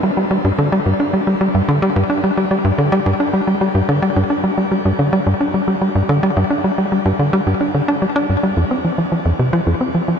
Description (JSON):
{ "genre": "ambient", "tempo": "109 BPM", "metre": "4/4", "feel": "straight", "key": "unclear", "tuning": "A4 = 440 Hz", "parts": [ { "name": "tight sequencer bass", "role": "solo", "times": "0.0-10.2 s", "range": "F2 to D4", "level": "-14 LUFS", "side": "equal", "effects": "ping-pong delay" } ], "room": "wet shimmer reverb, RT60 7.5 s", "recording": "dark, warm production", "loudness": "-14 LUFS", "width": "side -6 dB against mid", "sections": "0.0-10.2 A section", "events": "none", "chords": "none" }